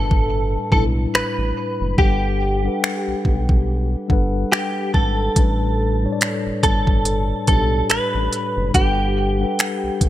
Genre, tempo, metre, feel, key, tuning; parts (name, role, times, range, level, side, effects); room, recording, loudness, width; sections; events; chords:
contemporary R&B; 71 BPM; 4/4; swing 58% on 16ths; A4 = 440 Hz
direct-recorded clean electric guitar; melody; 0.0-10.1 s; G4 to B4; -22 LUFS; equal; ensemble chorus, digital delay
mellow tine electric piano; accompaniment; 0.0-10.1 s; A2 to G5; -24 LUFS; left 3 dB; medium stereo tremolo
round analog bass; bass; 0.0-10.1 s; F#1 to B1; -22 LUFS; equal
smooth R&B drum kit; drums; 0.1-10.1 s; finger snaps, hi-hat, kick drum; -18 LUFS; equal
little or no reverb; bright 1980s-style digital production; -17 LUFS; side -13 dB against mid
0.0-10.1 A section
0.0 A9sus4; 2.0 Gmaj9; 5.4 A9sus4; 8.7 Gmaj9